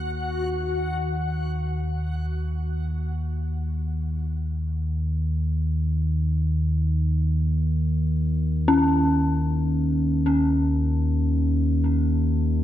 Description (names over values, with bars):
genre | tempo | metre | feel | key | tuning
dark ambient drone | free time | none | none | unclear | A4 = 439 Hz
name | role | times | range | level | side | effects
dark detuned synth bell | arpeggios | 0.0-1.9, 8.7-12.6 s | Db4 | -23 LUFS | equal | chorus, tape echo
deep rumbling drone | drone | 0.0-12.6 s | Eb2 to Eb3 | -22 LUFS | equal | built-in reverb
backwards swelling texture | texture | 0.0-1.9 s | Gb4 to Gb5 | -32 LUFS | left 2 dB | built-in reverb
room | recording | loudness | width
moderate spring reverb, RT60 2.5 s | echo-heavy mix | -21 LUFS | side -12 dB against mid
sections
0.0-1.8 A section; 1.8-12.6 B section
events
none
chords
0.0 Ebm; 1.8 Dbsus2/Eb